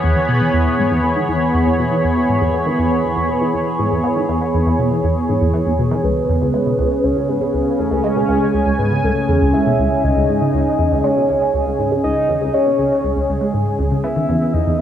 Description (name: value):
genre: ambient, sequencer-driven space music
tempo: 120 BPM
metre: 4/4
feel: straight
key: E major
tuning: A4 = 440 Hz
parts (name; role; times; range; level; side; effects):
- sweeping resonant pad; sustained chords; 0.0-14.8 s; C#3 to B5; -18 LUFS; equal; chorus
- resonant blip pluck; riff; 0.0-14.8 s; C#2 to B3; -19 LUFS; equal; phaser, lush chorus, tape echo
- soft octave-layered synth lead; melody; 6.0-14.8 s; G#4 to E5; -19 LUFS; right 1 dB; chorus, phaser, tape echo
room: wet lush hall reverb, RT60 3.0 s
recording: dreamy mix soaked in reverb, cassette tape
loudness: -14 LUFS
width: side -10 dB against mid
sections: 0.0-14.8 A section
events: filter sweep on synth arpeggio sound 0.0-14.8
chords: 0.0 E; 6.0 C#5; 14.0 E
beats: | 0.04 0.54 1.04 1.54 | 2.04 2.54 3.04 3.54 | 4.04 4.54 5.04 5.54 | 6.04 6.54 7.04 7.54 | 8.04 8.54 9.04 9.54 | 10.04 10.54 11.04 11.54 | 12.04 12.54 13.04 13.54 | 14.04 14.54